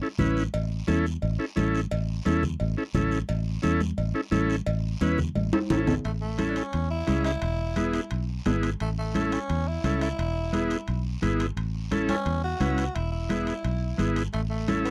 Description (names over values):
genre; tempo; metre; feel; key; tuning
latin, cumbia; 174 BPM; 4/4; straight; A major; A4 = 438 Hz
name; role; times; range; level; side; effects
combo organ; accompaniment; 0.0-14.9 s; B3 to B4; -29 LUFS; equal; none
fingered electric bass; bass; 0.2-14.9 s; E1 to E2; -30 LUFS; equal; none
congas; percussion; 0.2-14.9 s; none; -34 LUFS; equal; none
cowbell and timbales; percussion; 0.2-14.9 s; none; -36 LUFS; equal; none
guiro; percussion; 0.2-14.9 s; none; -48 LUFS; equal; none
growling tenor saxophone; second line; 6.0-14.9 s; A3 to F#4; -35 LUFS; equal; none
room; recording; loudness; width
light reverb; dry, close 1970s-style studio recording; -27 LUFS; mono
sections
0.0-6.0 A section; 6.0-14.9 B section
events
drum fill 5.4-6.0; tenor saxophone solo 6.0-14.9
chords
0.0 A; 7.4 E; 8.8 A; 10.2 E; 11.6 A; 13.0 E; 14.3 A